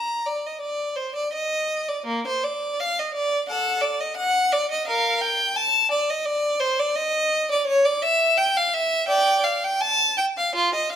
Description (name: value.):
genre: classical, baroque-style suite movement for unaccompanied violin.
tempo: 85 BPM.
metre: 4/4.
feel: uneven beats, rubato.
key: unclear.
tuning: A4 = 438 Hz.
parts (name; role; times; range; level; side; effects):
clear violin; solo; 0.0-11.0 s; Bb3 to Bb5; -20 LUFS; equal; none.
room: wet stone room reverb, RT60 1.2 s.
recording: none.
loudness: -20 LUFS.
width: side -9 dB against mid.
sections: 0.0-11.0 A section.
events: none.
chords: none.